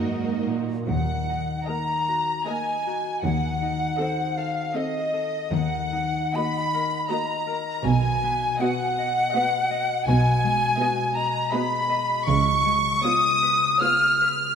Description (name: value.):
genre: classical, slow romantic movement for symphony orchestra.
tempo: 68-83 BPM.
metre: 3/4.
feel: rubato.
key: Eb minor.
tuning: A4 = 441 Hz.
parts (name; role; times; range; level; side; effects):
warm symphonic violin section; melody; 0.0-14.4 s; C#5 to Eb5; -42 LUFS; left 3 dB; none.
rich symphonic violin section; second line; 0.0-14.6 s; Gb4 to E#6; -28 LUFS; left 1 dB; none.
warm symphonic viola section; accompaniment; 0.0-14.4 s; Bb3 to Bb4; -31 LUFS; right 3 dB; none.
concert harp; arpeggios; 0.0-14.6 s; B2 to Eb5; -30 LUFS; left 7 dB; none.
warm symphonic cello section; bass; 0.0-12.9 s; Eb2 to C#3; -30 LUFS; right 4 dB; none.
hollow concert flute; second line; 0.9-14.3 s; Eb5 to E#6; -24 LUFS; equal; none.
rich studio double bass section; bass; 0.9-12.9 s; B1 to Eb2; -27 LUFS; right 3 dB; none.
timpani; percussion; 12.3-13.4 s; C#3; -32 LUFS; right 3 dB; none.
room: wet concert hall reverb, RT60 2.4 s.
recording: none.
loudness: -21 LUFS.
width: side -7 dB against mid.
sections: 0.9-14.6 A section.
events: none.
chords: 0.0 Ebm; 3.2 Ebdim7; 5.5 Ebm; 7.9 B; 10.1 G#m7/B; 12.3 C#7.